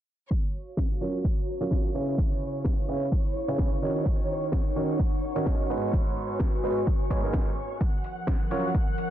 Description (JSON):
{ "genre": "piano house", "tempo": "128 BPM", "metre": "4/4", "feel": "swing 55% on 16ths", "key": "F# major", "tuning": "A4 = 439 Hz", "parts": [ { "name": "warm symphonic string section", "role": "sustained chords", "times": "0.3-9.1 s", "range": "C#5 to F#6", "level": "-38 LUFS", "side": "right 4 dB", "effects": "sidechain pumping" }, { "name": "electronic kick drum", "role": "drums", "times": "0.3-8.8 s", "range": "none", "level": "-26 LUFS", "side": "equal", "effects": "overdrive, studio reverb" }, { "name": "warbly tape-like pad", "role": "texture", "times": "0.7-9.1 s", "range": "E#3 to B5", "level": "-35 LUFS", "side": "left 2 dB", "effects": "chorus, built-in reverb, sidechain pumping" }, { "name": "garage drum kit", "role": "drums", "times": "0.8-9.1 s", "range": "hi-hat, snare drum", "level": "-37 LUFS", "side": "equal", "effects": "studio reverb" }, { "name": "bright baby grand piano", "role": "riff", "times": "1.0-8.7 s", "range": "G#2 to C#5", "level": "-30 LUFS", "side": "right 2 dB", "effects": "sidechain pumping, low-pass filter, ping-pong delay" } ], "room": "studio reverb", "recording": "dense, heavily limited modern master, low-pass filter", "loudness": "-25 LUFS", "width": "side -11 dB against mid", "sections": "0.3-9.1 A section", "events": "filter sweep on grand piano 0.3-9.1; filter sweep 0.3-9.1", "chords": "0.3 F#maj7; 2.2 C#m7; 4.1 D#m7; 5.7 G#m7; 7.8 F#maj7" }